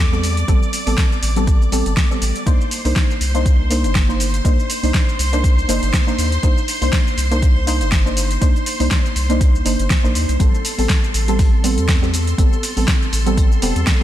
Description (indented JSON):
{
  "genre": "deep house",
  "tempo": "121 BPM",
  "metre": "4/4",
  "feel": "swing 56% on 16ths",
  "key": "unclear",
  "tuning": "A4 = 440 Hz",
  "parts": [
    { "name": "deep mellow chord stab", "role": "stabs", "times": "0.0-14.0 s", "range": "G3 to C5", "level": "-22 LUFS", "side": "equal", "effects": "chorus, sidechain pumping, ping-pong delay" },
    { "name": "round analog bass", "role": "bass", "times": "0.0-13.8 s", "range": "E1 to E2", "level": "-19 LUFS", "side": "equal", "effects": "sidechain pumping" },
    { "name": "deep house drum kit", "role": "drums", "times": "0.0-14.0 s", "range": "hi-hat, shaker, snare drum", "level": "-23 LUFS", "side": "equal", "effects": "small room reverb" },
    { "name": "string machine, violins", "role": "texture", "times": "0.0-14.0 s", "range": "A4 to D6", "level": "-27 LUFS", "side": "equal", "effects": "ensemble chorus, sidechain pumping" },
    { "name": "electronic kick drum", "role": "drums", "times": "0.5-14.0 s", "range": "none", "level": "-16 LUFS", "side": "equal", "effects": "small room reverb" },
    { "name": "dusty soul sampler-style drum kit", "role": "drums", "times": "10.4-14.0 s", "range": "hi-hat, snare drum, tambourine", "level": "-33 LUFS", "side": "left 1 dB", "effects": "none" }
  ],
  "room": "light reverb, digital ambience",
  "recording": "none",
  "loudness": "-14 LUFS",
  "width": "side -12 dB against mid",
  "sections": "0.0-14.0 A section",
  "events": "none",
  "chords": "0.0 Am9; 2.5 Cm9; 10.4 Am9"
}